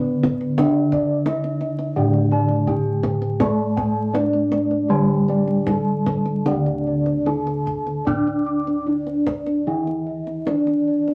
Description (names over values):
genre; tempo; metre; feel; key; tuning
Javanese gamelan; 75-88 BPM; 4/4; straight; D pelog barang; A4 = 440 Hz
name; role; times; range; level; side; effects
gamelan-type bronze metallophone; melody; 0.0-11.1 s; B3+20c to D5; -26 LUFS; equal; none
gamelan-type bronze metallophone; accompaniment; 0.0-11.1 s; D3 to D4; -26 LUFS; equal; none
gamelan-type bossed gongs; arpeggios; 0.0-6.1 s; B4+20c to A5-40c; -33 LUFS; equal; none
gamelan-type bronze metallophone; arpeggios; 0.0-11.1 s; B4+20c to D6; -31 LUFS; equal; none
gamelan-type bossed gongs; bass; 0.0-11.1 s; D2 to A4-40c; -27 LUFS; equal; none
kendang; percussion; 0.2-11.1 s; none; -29 LUFS; equal; none
room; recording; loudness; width
wet small room reverb, RT60 0.6 s; vinyl crackle; -21 LUFS; mono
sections
0.0-6.5 A section; 6.5-11.1 B section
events
none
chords
none